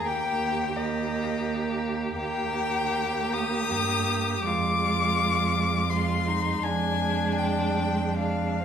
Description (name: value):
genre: classical, slow romantic movement for string quartet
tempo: 68-89 BPM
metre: 3/4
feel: rubato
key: unclear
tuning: A4 = 439 Hz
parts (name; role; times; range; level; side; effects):
- warm violin; melody; 0.0-8.6 s; Eb5 to Eb6; -28 LUFS; left 6 dB; none
- rich violin; second line; 0.0-8.6 s; C4 to G4; -31 LUFS; left 1 dB; none
- dark viola; accompaniment; 0.0-8.6 s; Ab3 to Bb3; -30 LUFS; right 4 dB; none
- clear cello; bass; 0.1-8.6 s; Eb2 to G2; -30 LUFS; right 4 dB; none
room: wet recital hall reverb, RT60 1.2 s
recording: recorded in a church or concert hall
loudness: -24 LUFS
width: side -8 dB against mid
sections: 0.0-8.6 A section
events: none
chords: 0.1 Eb; 4.4 Fm